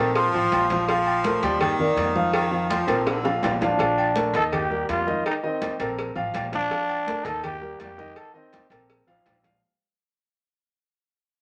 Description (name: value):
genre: latin, salsa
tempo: 165 BPM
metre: 4/4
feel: straight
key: Bb major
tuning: A4 = 440 Hz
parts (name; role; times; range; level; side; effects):
- clear saxophone section; second line; 0.0-3.8 s; Bb2 to F3; -27 LUFS; equal; none
- warm concert grand piano; accompaniment; 0.0-9.6 s; Eb3 to G5; -29 LUFS; equal; none
- upright bass; bass; 0.0-9.6 s; A1 to F2; -36 LUFS; equal; none
- congas; percussion; 0.2-9.6 s; none; -38 LUFS; equal; none
- cowbell and bongos; percussion; 0.2-9.6 s; none; -33 LUFS; equal; none
- agogo bells and timbales; percussion; 0.3-9.5 s; none; -33 LUFS; equal; none
- growling trombone; melody; 3.6-8.7 s; C4 to A4; -28 LUFS; equal; none
room: wet studio reverb, RT60 0.5 s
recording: none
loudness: -24 LUFS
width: mono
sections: 0.0-3.8 A section; 3.8-9.6 B section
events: drum fill 2.9-3.8, 9.1-9.6; fade-out 3.8-9.6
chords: 0.2 Bb5; 1.6 Ebmaj7; 2.3 Bbmaj7; 4.5 Eb; 5.2 Bbsus24; 6.0 Bbmaj7; 7.4 Eb; 8.2 Bbsus24; 8.9 Bb5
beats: 0.15 0.52 | 0.88 1.25 1.61 1.97 | 2.34 2.70 3.06 3.43 | 3.79 4.16 4.52 4.89 | 5.25 5.62 5.98 6.34 | 6.71 7.07 7.44 7.80 | 8.17 8.53 8.90 9.26